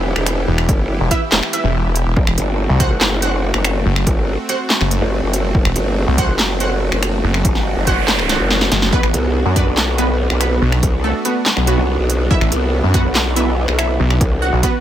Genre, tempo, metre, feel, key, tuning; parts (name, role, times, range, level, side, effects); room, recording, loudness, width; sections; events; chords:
heavy wobble dubstep; 142 BPM; 4/4; half-time; A4 = 440 Hz
supersaw pad; sustained chords; 0.0-14.8 s; E3 to G4; -26 LUFS; right 1 dB; sidechain pumping
growl bass; bass; 0.0-14.5 s; E1 to C2; -18 LUFS; equal; chorus, overdrive
big-room dance drum kit; drums; 0.2-14.7 s; finger snaps, handclaps, hi-hat, snare drum; -18 LUFS; equal
snarling distorted saw bass; bass; 0.5-14.6 s; E1 to F#2; -16 LUFS; equal; distortion, overdrive
electronic kick drum; drums; 0.7-14.7 s; -17 LUFS; equal
orchestra-hit-like synth stab; stabs; 1.1-14.7 s; B3 to F#5; -23 LUFS; right 3 dB; built-in reverb, tape echo
noise sweep; sound effects; 7.7-8.9 s; -25 LUFS; right 5 dB
wide unison pluck; melody; 8.9-14.8 s; F#3 to F#5; -23 LUFS; right 1 dB; phaser, tape echo
little or no reverb; -14 LUFS; side -11 dB against mid
0.0-14.8 A section
noise sweep 7.7-8.9; drum fill 8.3-8.9
0.0 Em; 2.2 F#dim; 8.9 Bm